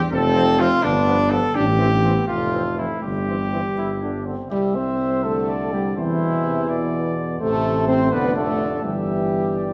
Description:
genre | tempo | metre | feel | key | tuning
classical, brass quintet | 83 BPM (dotted quarters) | 6/8 | straight | C major | A4 = 440 Hz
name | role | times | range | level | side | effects
warm cornet | melody | 0.1-9.7 s | D4 to E5 | -26 LUFS | equal | none
mellow French horn | accompaniment | 0.1-9.7 s | E3 to D4 | -26 LUFS | equal | none
warm tuba | bass | 0.1-9.7 s | F1 to E2 | -26 LUFS | equal | none
mellow trumpet | second line | 0.4-9.7 s | B3 to C5 | -31 LUFS | equal | none
warm euphonium | accompaniment | 0.4-9.7 s | B2 to F3 | -31 LUFS | equal | none
room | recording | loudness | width
wet recital hall reverb, RT60 1.8 s | recorded in a church or concert hall | -21 LUFS | mono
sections
0.0-4.5 A section; 4.5-9.7 B section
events
none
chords
0.1 F; 0.8 G7; 1.6 Am; 2.3 Fmaj7; 3.0 C/G; 3.8 G5; 4.5 C; 6.0 C/E; 6.7 E5; 7.4 Am; 8.1 Dm/F; 8.8 Em/G

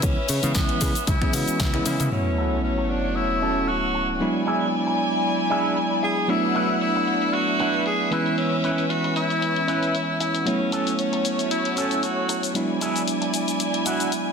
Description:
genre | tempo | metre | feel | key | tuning
nu-disco, nu disco | 115 BPM | 4/4 | swing 55% on 16ths | A major | A4 = 437 Hz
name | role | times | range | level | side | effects
clear tenor saxophone | melody | 0.0-12.4 s | B3 to G#4 | -26 LUFS | left 1 dB | digital delay
bell-like tine electric piano | accompaniment | 0.0-14.3 s | E3 to G#4 | -25 LUFS | right 2 dB | sidechain pumping, digital delay
warm symphonic violin section | sustained chords | 0.0-14.3 s | A3 to G#5 | -28 LUFS | left 2 dB | vintage 12-bit sampler grit, sidechain pumping
modern bright picked electric bass | bass | 0.0-2.1 s | C#2 to C#3 | -26 LUFS | equal | none
electronic kick drum | drums | 0.0-1.7 s | none | -24 LUFS | equal | overdrive, studio reverb
house drum kit | drums | 0.0-14.2 s | finger snaps, hi-hat, shaker, snare drum, toms | -29 LUFS | left 4 dB | low-pass filter on hats, studio reverb, low-pass filter on perc, low-pass filter on snare, low-pass filter on toms
sub drop | sound effects | 2.1-4.2 s | none | -28 LUFS | equal | none
electric guitar with an envelope filter | riff | 2.4-14.1 s | C#4 to B4 | -29 LUFS | right 2 dB | lush chorus, low-pass filter, digital delay
room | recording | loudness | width
wet lush hall reverb, RT60 1.8 s, digital ambience | dense, heavily limited modern master | -20 LUFS | side -6 dB against mid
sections
0.0-2.1 A section; 2.1-14.3 B section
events
drum fill 1.9; impact 2.1-4.2; filter sweep on drum 2.1-14.3; filter sweep on clean electric guitar 2.1-14.3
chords
0.0 C#m7; 2.1 A6; 4.2 E7; 6.3 D69; 8.1 C#m7; 10.5 A6; 12.6 E7

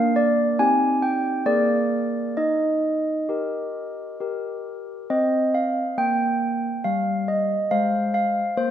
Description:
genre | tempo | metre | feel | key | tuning
classical, tune for handbells | 66-70 BPM | 3/4 | straight | unclear | A4 = 440 Hz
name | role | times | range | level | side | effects
handbells | solo | 0.0-8.7 s | G3 to Ab5 | -20 LUFS | equal | none
room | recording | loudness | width
wet concert hall reverb, RT60 2.1 s | none | -20 LUFS | side -10 dB against mid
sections
0.0-5.1 A section; 5.1-8.7 B section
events
none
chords
0.0 Bb; 0.6 Cm; 1.5 Bb7; 2.4 Eb; 5.1 C5; 7.7 Ab69

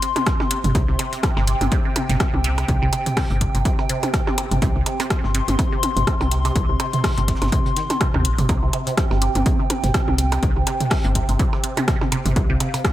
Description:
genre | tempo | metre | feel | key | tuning
minimal techno | 124 BPM | 4/4 | swing 56% on 16ths | unclear | A4 = 442 Hz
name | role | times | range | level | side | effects
resonant blip pluck | riff | 0.0-12.9 s | C3 to Eb3 | -26 LUFS | right 3 dB | phaser, cassette tape, sidechain pumping, tape echo
cloth-damped thuddy drum kit | drums | 0.0-12.9 s | hi-hat, shaker, snare drum | -40 LUFS | equal | none
garage drum kit | drums | 0.0-12.9 s | hi-hat, rim click | -26 LUFS | left 1 dB | none
warbly tape-like pad | texture | 0.0-12.9 s | F5 to C6 | -28 LUFS | left 1 dB | chorus, built-in reverb, sidechain pumping
electronic toms and percussion blips | percussion | 0.2-12.8 s | none | -26 LUFS | right 1 dB | analog delay
electronic kick drum | drums | 0.3-12.9 s | none | -22 LUFS | equal | overdrive
woody FM bass | bass | 0.6-12.6 s | G1 to Eb2 | -22 LUFS | equal | sidechain pumping
room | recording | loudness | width
light reverb | none | -18 LUFS | side -14 dB against mid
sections
0.0-12.9 A section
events
none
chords
0.0 C5

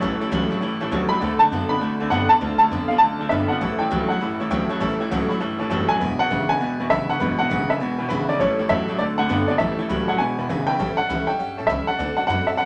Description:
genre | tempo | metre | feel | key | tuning
rock | 200 BPM | 4/4 | swing 65% on 8ths | A mixolydian | A4 = 440 Hz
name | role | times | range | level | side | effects
honky-tonk upright piano | accompaniment | 0.0-12.7 s | B4 to C6 | -35 LUFS | equal | none
picked steel-string acoustic guitar | accompaniment | 0.0-12.7 s | A2 to B4 | -31 LUFS | equal | none
electric guitar through a small old amp | riff | 0.0-10.8 s | E2 to B3 | -27 LUFS | equal | warbly pitch drift
upright bass | bass | 0.0-12.7 s | E1 to G2 | -32 LUFS | equal | none
warm upright piano | melody | 1.1-12.7 s | C#5 to B5 | -23 LUFS | equal | none
room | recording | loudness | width
moderate studio reverb, RT60 0.7 s | none | -22 LUFS | mono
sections
0.0-10.8 A section; 10.8-12.7 A section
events
none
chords
0.0 A7; 1.2 D7; 2.4 Dm7; 3.6 A7; 6.0 E7; 8.4 A7; 9.0 D7; 9.6 A7; 10.2 E7; 10.8 A7; 12.0 D7

